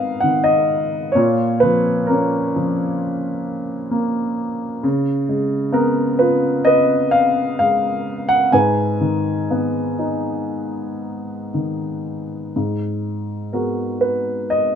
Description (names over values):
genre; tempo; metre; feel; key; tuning
classical, lyrical solo piano; 57-68 BPM; 4/4; rubato; G# dorian; A4 = 440 Hz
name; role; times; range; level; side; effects
warm upright piano; solo; 0.0-14.8 s; G#2 to G#5; -17 LUFS; equal; none
room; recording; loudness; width
light reverb; none; -17 LUFS; side -8 dB against mid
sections
0.0-12.5 A section; 12.5-14.8 A section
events
none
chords
0.0 G#m; 1.1 A#m; 4.8 C#7; 8.5 G#m; 12.5 G#m7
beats
0.23 | 1.15 2.09 3.00 3.91 | 4.83 5.75 6.66 7.59 | 8.53 9.50 10.50 11.53 | 12.54 13.52 14.50